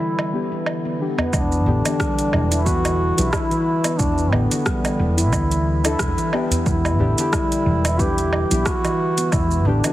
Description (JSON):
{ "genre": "organic downtempo", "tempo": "90 BPM", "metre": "4/4", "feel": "swing 56% on 16ths", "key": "E minor", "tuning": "A4 = 440 Hz", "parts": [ { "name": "dark duduk", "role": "melody", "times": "0.0-9.9 s", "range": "B3 to G4", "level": "-24 LUFS", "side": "equal", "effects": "digital delay" }, { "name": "warm analog pad", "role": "sustained chords", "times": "0.0-1.3 s", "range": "D3 to B4", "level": "-34 LUFS", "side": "right 2 dB", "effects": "none" }, { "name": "handpan", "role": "arpeggios", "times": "0.0-9.9 s", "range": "D3 to E4", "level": "-24 LUFS", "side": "equal", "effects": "tape echo" }, { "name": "deep house drum kit", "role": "drums", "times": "0.2-9.9 s", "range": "hi-hat, rim click, shaker, woodblock", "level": "-26 LUFS", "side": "right 2 dB", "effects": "overdrive, small room ambience" }, { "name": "deep mellow chord stab", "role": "accompaniment", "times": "0.3-9.9 s", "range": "E3 to B4", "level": "-28 LUFS", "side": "left 3 dB", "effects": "chorus, cassette tape, sidechain pumping, tape echo" }, { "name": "udu", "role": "percussion", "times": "1.2-9.8 s", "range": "none", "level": "-26 LUFS", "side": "equal", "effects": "none" }, { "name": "woody fretless electric bass", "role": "bass", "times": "1.3-9.8 s", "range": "E1 to D2", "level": "-21 LUFS", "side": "equal", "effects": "sidechain pumping" }, { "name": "electronic kick drum", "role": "drums", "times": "1.3-9.5 s", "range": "none", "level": "-24 LUFS", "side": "equal", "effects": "overdrive, small room ambience" } ], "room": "light reverb, digital ambience", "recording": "heavily compressed radio sound", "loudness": "-17 LUFS", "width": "side -14 dB against mid", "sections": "0.0-1.3 A section; 1.3-9.9 B section", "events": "none", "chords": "0.0 Em7", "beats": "0.00 0.66 | 1.33 2.00 2.66 3.33 | 4.00 4.66 5.33 6.00 | 6.66 7.33 8.00 8.66 | 9.33" }